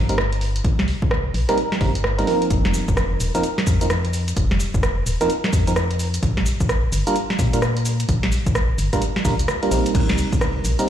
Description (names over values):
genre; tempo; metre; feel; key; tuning
UK garage, two-step garage; 129 BPM; 4/4; swing 62% on 16ths; unclear; A4 = 440 Hz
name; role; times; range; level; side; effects
organ-like FM bass; bass; 0.0-10.8 s; Eb1 to Bb2; -22 LUFS; equal; none
FM electric piano; stabs; 0.1-10.9 s; F3 to Bb4; -23 LUFS; right 2 dB; chorus, dub echo
punchy analog drum machine; drums; 0.1-10.9 s; cabasa, crash cymbal, hi-hat, rim click, snare drum; -24 LUFS; right 1 dB; none
electronic kick drum; drums; 0.6-10.4 s; none; -22 LUFS; equal; none
room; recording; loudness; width
light reverb; played on a big sound system in a bare room, large studio reverb; -18 LUFS; side -10 dB against mid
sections
0.0-10.9 A section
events
none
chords
0.0 Cm7; 2.3 F7sus4; 6.2 Bb6; 9.9 Cm7